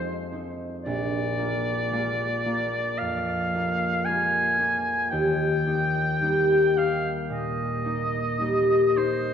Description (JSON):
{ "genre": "classical, romantic duo for oboe and harp", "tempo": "55 BPM", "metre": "4/4", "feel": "rubato", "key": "unclear", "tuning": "A4 = 440 Hz", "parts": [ { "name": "warm oboe", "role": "melody", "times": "0.0-9.3 s", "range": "C5 to Ab5", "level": "-26 LUFS", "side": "equal", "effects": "none" }, { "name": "concert harp", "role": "accompaniment", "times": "0.0-9.3 s", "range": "Bb1 to F4", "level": "-25 LUFS", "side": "left 1 dB", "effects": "none" } ], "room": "wet concert hall reverb, RT60 2.6 s", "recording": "dark, warm production", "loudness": "-22 LUFS", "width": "side -8 dB against mid", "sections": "0.0-9.3 A section", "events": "none", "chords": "0.0 Fm7; 0.8 Bb7; 5.1 Eb" }